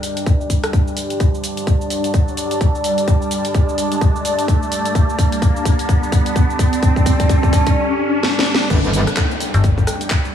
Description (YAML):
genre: bass house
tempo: 128 BPM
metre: 4/4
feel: swing 59% on 16ths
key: unclear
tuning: A4 = 441 Hz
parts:
  - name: dark analog pad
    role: sustained chords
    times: 0.0-10.3 s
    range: G3 to A5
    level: -21 LUFS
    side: equal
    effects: chorus, phaser, sidechain pumping
  - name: garage drum kit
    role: drums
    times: 0.0-10.3 s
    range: cabasa, crash cymbal, handclaps, hi-hat, rim click, snare drum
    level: -24 LUFS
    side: equal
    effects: none
  - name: riser and downlifter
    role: sound effects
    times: 0.0-10.3 s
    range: none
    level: -24 LUFS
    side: equal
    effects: none
  - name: electronic kick drum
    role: drums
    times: 0.3-10.2 s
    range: none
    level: -15 LUFS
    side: equal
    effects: none
  - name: metallic wobble bass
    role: bass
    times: 8.7-9.1 s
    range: G1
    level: -17 LUFS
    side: equal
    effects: chorus, overdrive, sidechain pumping
  - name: metallic FM bass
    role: bass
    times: 9.5-9.9 s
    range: G1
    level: -16 LUFS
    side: left 2 dB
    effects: sidechain pumping
room: light reverb, digital ambience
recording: small room ambience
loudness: -14 LUFS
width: side -9 dB against mid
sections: 0.0-8.7 A section; 8.7-10.3 B section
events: build-up 0.0-8.7; riser 0.0-8.7; drum fill 1.2-7.8, 8.2-8.7; break 7.8-8.7; drop 8.7-10.3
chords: 0.0 G5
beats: 0.26 0.73 | 1.20 1.67 2.14 2.61 | 3.08 3.54 4.01 4.48 | 4.95 5.42 5.89 6.36 | 6.83 7.29 7.76 8.23 | 8.70 9.17 9.64 10.11